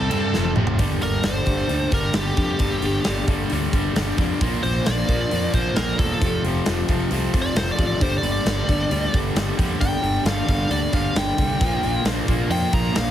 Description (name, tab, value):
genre	quiet-loud alternative rock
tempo	133 BPM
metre	4/4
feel	straight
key	G minor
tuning	A4 = 440 Hz
part	biting lead guitar	melody	0.0-13.1 s	G4 to Bb5	-26 LUFS	equal	overdrive, slapback echo
part	distorted electric guitar	riff	0.0-13.1 s	F2 to C4	-24 LUFS	left 1 dB	distortion
part	fuzz fingered electric bass	bass	0.0-13.1 s	E1 to G2	-26 LUFS	equal	overdrive
part	big rock drum kit	drums	0.1-13.1 s	crash cymbal, hi-hat, kick drum, snare drum, toms	-24 LUFS	equal	none
part	electric guitar through a small old amp	arpeggios	0.8-13.1 s	G2 to Bb4	-30 LUFS	right 1 dB	harmonic tremolo, slapback echo
room	light reverb, small room ambience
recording	heavily compressed radio sound, multiband compression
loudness	-19 LUFS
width	side -11 dB against mid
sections	0.8-13.1 A section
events	drum fill 0.3-0.8; lead electric guitar solo 0.8-13.1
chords	0.3 F; 0.8 Gmadd9; 4.4 Bb; 6.2 F; 8.0 Gmadd9; 11.6 Bb